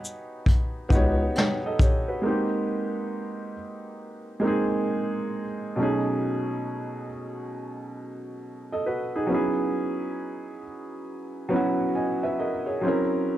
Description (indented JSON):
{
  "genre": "lo-fi hip hop",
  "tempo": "68 BPM",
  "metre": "4/4",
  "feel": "swing 65% on 16ths",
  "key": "unclear",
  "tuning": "A4 = 439 Hz",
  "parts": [
    { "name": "felt-muted upright piano", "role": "accompaniment", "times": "0.0-13.4 s", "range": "B2 to Ab5", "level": "-26 LUFS", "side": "right 1 dB", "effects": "cassette tape, low-pass filter, plate reverb" },
    { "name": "vintage brush drum kit", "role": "drums", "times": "0.0-2.1 s", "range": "hi-hat, kick drum, shaker, snare drum", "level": "-21 LUFS", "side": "equal", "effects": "none" },
    { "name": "breathy bass clarinet", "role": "bass", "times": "0.9-1.3 s", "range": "Db2", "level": "-25 LUFS", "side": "left 1 dB", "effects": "none" }
  ],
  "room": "moderate small room reverb, RT60 0.5 s",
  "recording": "dark, warm production",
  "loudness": "-24 LUFS",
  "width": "side -13 dB against mid",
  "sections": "0.0-2.2 A section; 2.2-13.4 B section",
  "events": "none",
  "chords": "0.0 Eb7alt; 2.2 Abmaj9; 5.8 B13; 9.3 E69; 12.8 Gb7#11"
}